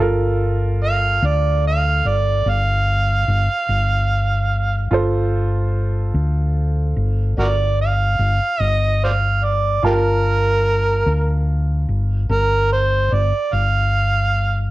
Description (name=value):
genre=slow blues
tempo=49 BPM (dotted quarters)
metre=12/8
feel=straight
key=G minor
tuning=A4 = 440 Hz
part: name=bright upright piano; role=accompaniment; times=0.0-14.7 s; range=F4 to A5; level=-24 LUFS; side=right 3 dB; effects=none
part: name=hollow-body short-scale fingered electric bass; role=bass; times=0.0-14.7 s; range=G1 to D2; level=-18 LUFS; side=left 1 dB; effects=none
part: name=overdriven harmonica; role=second line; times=0.8-14.7 s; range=F4 to F5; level=-19 LUFS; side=right 2 dB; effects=slapback echo
room=light reverb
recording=none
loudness=-16 LUFS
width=side -17 dB against mid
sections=0.0-14.7 A section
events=harmonica solo 0.0-14.7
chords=0.0 Gm7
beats=| 0.00 1.23 2.46 3.69 | 4.92 6.15 7.38 8.61 | 9.84 11.07 12.30 13.53